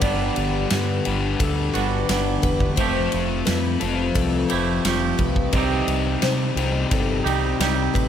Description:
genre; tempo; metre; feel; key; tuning
rock, shoegaze and dream pop; 87 BPM; 4/4; straight; G major; A4 = 439 Hz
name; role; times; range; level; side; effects
picked twelve-string acoustic guitar; arpeggios; 0.0-8.1 s; G4 to Eb5; -30 LUFS; left 7 dB; analog chorus, slapback echo
overdriven semi-hollow guitar; riff; 0.0-8.1 s; G2 to A4; -25 LUFS; left 6 dB; lush chorus
twangy electric guitar; riff; 0.0-8.1 s; C3 to G4; -26 LUFS; right 12 dB; reverse reverb
growling fingered electric bass; bass; 0.0-8.1 s; E1 to C3; -26 LUFS; equal; overdrive
big rock drum kit; drums; 0.0-8.1 s; kick drum, ride cymbal, snare drum; -25 LUFS; equal; none
room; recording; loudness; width
light reverb, studio reverb; none; -19 LUFS; side -9 dB against mid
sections
0.0-8.1 A section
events
none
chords
0.0 G; 2.8 Fadd9; 5.5 Cm

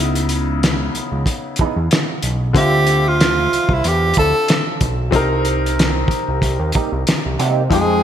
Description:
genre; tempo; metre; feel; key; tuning
R&B, neo-soul; 93 BPM; 4/4; swing 56% on 16ths; unclear; A4 = 440 Hz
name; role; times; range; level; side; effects
bright grand piano; accompaniment; 0.0-8.0 s; C3 to G5; -22 LUFS; left 2 dB; none
fat analog bass; bass; 0.0-8.0 s; Cb2 to C3; -20 LUFS; equal; none
cloth-damped thuddy drum kit; drums; 0.2-7.9 s; hi-hat, kick drum, snare drum; -18 LUFS; equal; gated reverb
hollow-body jazz guitar; second line; 1.6-7.6 s; Fb3 to A4; -24 LUFS; right 9 dB; wah, ensemble chorus, digital delay
breathy tenor saxophone; melody; 2.6-8.0 s; E4 to A4; -17 LUFS; right 1 dB; none
dark brass ensemble; sustained chords; 7.7-8.0 s; F3 to G5; -24 LUFS; right 4 dB; none
room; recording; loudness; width
light reverb, studio ambience; bright 1980s-style digital production; -14 LUFS; side -9 dB against mid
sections
0.0-8.0 A section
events
none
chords
0.0 Dbm9; 2.5 Dm9; 5.1 Cm7

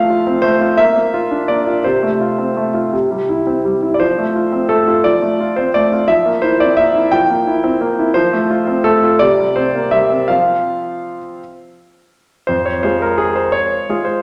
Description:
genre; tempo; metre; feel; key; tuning
classical-period piano sonatina; 57 BPM (dotted quarters); 6/8; rubato; F major; A4 = 440 Hz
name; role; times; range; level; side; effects
clear concert grand piano; solo; 0.0-14.2 s; F2 to G5; -15 LUFS; equal; none
room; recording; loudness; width
wet recital hall reverb, RT60 1.4 s; none; -15 LUFS; mono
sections
0.0-12.5 A section; 12.5-14.2 B section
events
none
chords
0.0 F; 0.8 Bb; 1.9 F/C; 2.9 C; 4.0 F; 6.1 C7/F; 8.2 F; 9.2 C5; 10.3 F5; 12.5 Fm

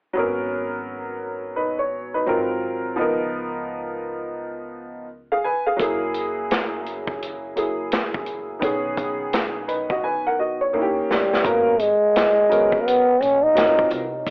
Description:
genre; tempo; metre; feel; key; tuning
hip hop, jazz-hop; 85 BPM; 4/4; swing 63% on 16ths; G# minor; A4 = 440 Hz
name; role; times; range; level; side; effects
warm upright piano; accompaniment; 0.1-14.0 s; D#3 to G#5; -23 LUFS; equal; none
upright bass; bass; 0.2-14.3 s; F#1 to D#2; -40 LUFS; equal; none
vintage drum kit; drums; 5.8-14.3 s; hi-hat, kick drum, snare drum; -24 LUFS; equal; cassette tape
growling trombone; melody; 11.1-13.9 s; G3 to D#4; -16 LUFS; equal; cassette tape, tape echo
room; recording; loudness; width
light reverb; home recording on cassette, telephone sound; -19 LUFS; side -30 dB against mid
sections
0.1-11.4 A section; 11.4-14.3 B section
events
drum fill 10.0-11.4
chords
0.1 G#m11; 2.3 G#13; 3.0 C#13; 5.8 F#9; 8.6 B69; 10.7 D#7; 11.4 G#m11; 13.6 G#13

